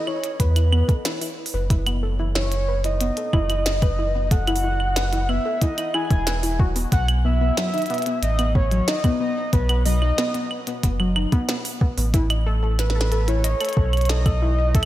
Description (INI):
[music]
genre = IDM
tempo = 92 BPM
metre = 4/4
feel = straight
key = E major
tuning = A4 = 437 Hz
[part]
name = warbly nostalgic lead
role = melody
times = 0.0-14.9 s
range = B4 to G#5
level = -27 LUFS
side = right 1 dB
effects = chorus, tape echo
[part]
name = warbly dusty pluck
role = arpeggios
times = 0.1-14.8 s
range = F#3 to D#5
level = -27 LUFS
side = left 2 dB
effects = chorus, vintage 12-bit sampler grit, tape echo
[part]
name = glitchy drum kit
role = drums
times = 0.1-14.9 s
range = claves, hi-hat, snare drum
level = -28 LUFS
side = right 1 dB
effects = overdrive
[part]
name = warm sub bass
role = bass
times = 0.4-14.9 s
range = E1 to E2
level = -21 LUFS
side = equal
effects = tube saturation
[part]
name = electronic kick drum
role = drums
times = 0.4-14.9 s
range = none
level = -19 LUFS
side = equal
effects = overdrive
[sound]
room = light reverb, digital ambience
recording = none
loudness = -19 LUFS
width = side -14 dB against mid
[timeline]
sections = 0.0-14.9 A section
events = none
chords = 0.0 Esus2; 6.9 B; 12.1 Asus2